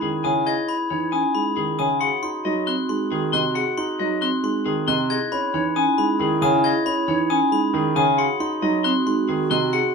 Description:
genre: classical, minimalist pattern music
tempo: 272 BPM (eighths)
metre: 7/8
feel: straight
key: C# minor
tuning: A4 = 440 Hz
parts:
  - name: clean electric guitar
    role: melody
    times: 0.0-9.9 s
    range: G#4 to B#5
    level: -23 LUFS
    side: left 7 dB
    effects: none
  - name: mellow hollow wooden-headed alto flute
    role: second line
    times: 0.0-9.9 s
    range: E4 to F#4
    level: -28 LUFS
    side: right 2 dB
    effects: none
  - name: dark baby grand piano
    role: accompaniment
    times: 0.0-9.8 s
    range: B#2 to D#4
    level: -26 LUFS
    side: right 3 dB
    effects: none
  - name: glockenspiel with brass mallets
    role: arpeggios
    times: 0.0-9.9 s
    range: B5 to G#6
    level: -27 LUFS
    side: left 4 dB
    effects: none
  - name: marimba with soft mallets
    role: arpeggios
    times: 0.0-9.9 s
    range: B#3 to D#5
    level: -25 LUFS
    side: right 6 dB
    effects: none
room: light reverb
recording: close, detailed microphones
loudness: -19 LUFS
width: side -5 dB against mid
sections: 0.0-9.9 A section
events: none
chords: 0.0 C#m7; 2.0 G#7; 5.1 C#m7; 8.2 G#7

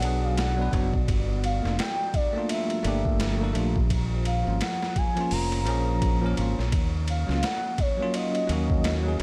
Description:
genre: trip hop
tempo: 85 BPM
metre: 4/4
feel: swing 59% on 16ths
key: Eb minor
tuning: A4 = 443 Hz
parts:
  - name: pure breathy sine lead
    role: melody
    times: 0.0-9.2 s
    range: Db5 to Bb5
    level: -34 LUFS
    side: equal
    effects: analog chorus, tape echo
  - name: bell-like tine electric piano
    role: accompaniment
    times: 0.0-9.2 s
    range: F3 to B4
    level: -32 LUFS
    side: equal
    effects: harmonic tremolo
  - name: deep dark ambient pad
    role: sustained chords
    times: 0.0-9.2 s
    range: F3 to Bb5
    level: -38 LUFS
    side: equal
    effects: chorus, built-in reverb
  - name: modern bright fingered electric bass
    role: bass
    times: 0.0-9.2 s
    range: F1 to Eb2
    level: -29 LUFS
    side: equal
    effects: tube saturation
  - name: boom bap sampler-style drum kit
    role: drums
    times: 0.0-9.2 s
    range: hi-hat, kick drum, ride cymbal, snare drum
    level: -32 LUFS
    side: equal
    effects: overdrive
room: digital ambience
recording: none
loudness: -26 LUFS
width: mono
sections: 0.0-9.2 A section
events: none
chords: 0.0 Bm; 1.1 Gm7; 3.9 Bbm; 6.7 Ebm7

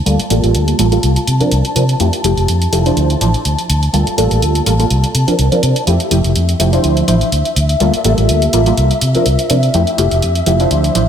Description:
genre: filtered disco house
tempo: 124 BPM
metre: 4/4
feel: swing 54% on 16ths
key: F major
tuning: A4 = 440 Hz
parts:
  - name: clear studio string section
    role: sustained chords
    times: 0.0-11.1 s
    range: E5 to A5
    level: -21 LUFS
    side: left 3 dB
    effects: vintage 12-bit sampler grit, low-pass filter
  - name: funky polysynth comp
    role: accompaniment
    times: 0.1-11.0 s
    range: F3 to C5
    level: -16 LUFS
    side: right 1 dB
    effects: chorus, phaser, low-pass filter
  - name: fingered electric bass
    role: bass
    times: 0.1-11.1 s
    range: F1 to C3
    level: -14 LUFS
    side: equal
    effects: low-pass filter
  - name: electronic hi-hat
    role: drums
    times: 0.1-11.1 s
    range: none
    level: -21 LUFS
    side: right 1 dB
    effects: none
room: moderate lush hall reverb, RT60 2.0 s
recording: dreamy mix soaked in reverb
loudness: -11 LUFS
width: side -8 dB against mid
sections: 0.0-11.1 A section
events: filter sweep 0.0-11.1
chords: 0.0 Gm9; 1.0 C9sus4; 2.0 Fmaj9; 3.0 Dm9; 3.7 Gm9; 4.9 C9sus4; 5.9 Fmaj9; 6.8 Dm9; 7.6 Gm9; 8.8 C9sus4; 9.7 Fmaj9

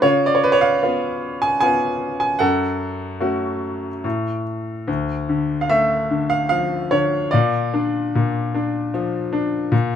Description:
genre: classical, lyrical solo piano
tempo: 74 BPM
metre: 3/4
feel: rubato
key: F# harmonic minor, D harmonic minor from 4.9 s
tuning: A4 = 444 Hz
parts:
  - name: clear grand piano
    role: solo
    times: 0.0-10.0 s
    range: D2 to G#5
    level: -18 LUFS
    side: equal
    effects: none
room: light reverb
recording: none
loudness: -18 LUFS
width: side -9 dB against mid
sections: 0.0-4.9 A section; 4.9-10.0 B section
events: none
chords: 0.0 C#7; 2.4 F#m; 4.0 N.C.; 4.9 Dm; 7.3 Bb

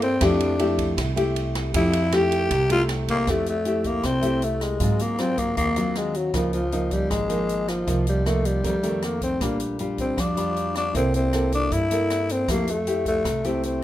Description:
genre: bossa nova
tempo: 156 BPM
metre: 4/4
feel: straight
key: F major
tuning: A4 = 440 Hz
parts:
  - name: growling tenor saxophone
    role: melody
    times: 0.0-13.8 s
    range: F3 to G4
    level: -24 LUFS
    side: left 1 dB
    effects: none
  - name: nylon-string guitar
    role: accompaniment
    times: 0.0-13.8 s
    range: F2 to A4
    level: -26 LUFS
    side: left 1 dB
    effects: none
  - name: upright bass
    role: bass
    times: 0.0-13.8 s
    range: Ab1 to Ab2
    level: -28 LUFS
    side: right 1 dB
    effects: none
  - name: open jazz drum kit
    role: drums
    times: 0.0-13.7 s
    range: hi-hat, kick drum, ride cymbal, rim click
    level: -31 LUFS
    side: right 1 dB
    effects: none
room: light reverb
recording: minimal, uncompressed stereo recording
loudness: -21 LUFS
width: side -13 dB against mid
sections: 0.0-3.3 A section; 3.3-13.8 B section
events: tenor saxophone solo 0.0-3.3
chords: 0.2 Fmaj9; 4.8 Ab13; 6.3 Db69; 7.9 Cm7; 8.6 F7; 9.4 Bb6; 10.9 C6; 12.5 Fmaj9

